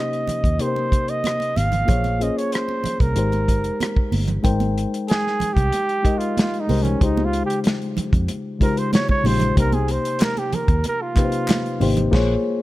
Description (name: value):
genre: lush 1970s-style soul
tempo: 94 BPM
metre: 4/4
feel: straight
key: Ab major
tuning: A4 = 440 Hz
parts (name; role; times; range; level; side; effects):
- breathy flugelhorn; melody; 0.0-12.0 s; Db4 to F5; -24 LUFS; right 2 dB; none
- mellow reed electric piano; accompaniment; 0.0-12.6 s; C3 to G5; -24 LUFS; left 3 dB; none
- warm soul drum kit; drums; 0.1-12.3 s; crash cymbal, hi-hat, kick drum, rim click, snare drum; -21 LUFS; equal; none
- vintage muted fingered electric bass; bass; 0.3-12.3 s; G1 to F2; -22 LUFS; equal; none
- congas; percussion; 0.3-12.1 s; none; -29 LUFS; right 5 dB; none
- group handclap; percussion; 10.2-11.6 s; none; -34 LUFS; left 2 dB; none
room: light reverb, small room ambience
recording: none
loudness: -18 LUFS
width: side -16 dB against mid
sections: 0.0-4.5 A section; 4.5-12.6 B section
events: flugelhorn solo 4.5-12.6; band accent 12.1-12.6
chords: 0.0 Cm7; 1.9 Bbm9; 3.2 Abmaj9; 4.5 Abmaj7; 7.0 Dbmaj9#11; 9.6 Cm7